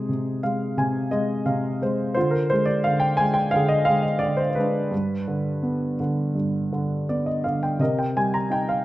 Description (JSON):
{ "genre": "classical, lyrical solo piano", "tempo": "86 BPM", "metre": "4/4", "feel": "rubato", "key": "unclear", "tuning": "A4 = 440 Hz", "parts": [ { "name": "dark grand piano", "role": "solo", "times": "0.0-8.8 s", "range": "G2 to Bb5", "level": "-21 LUFS", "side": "equal", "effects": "none" } ], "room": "light reverb", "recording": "close, detailed microphones", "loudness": "-21 LUFS", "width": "side -16 dB against mid", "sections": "0.0-8.8 A section", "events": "grand piano fill 0.1-2.2", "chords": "0.0 Ab6/C; 2.2 Ddim; 4.9 G; 7.8 Cm7" }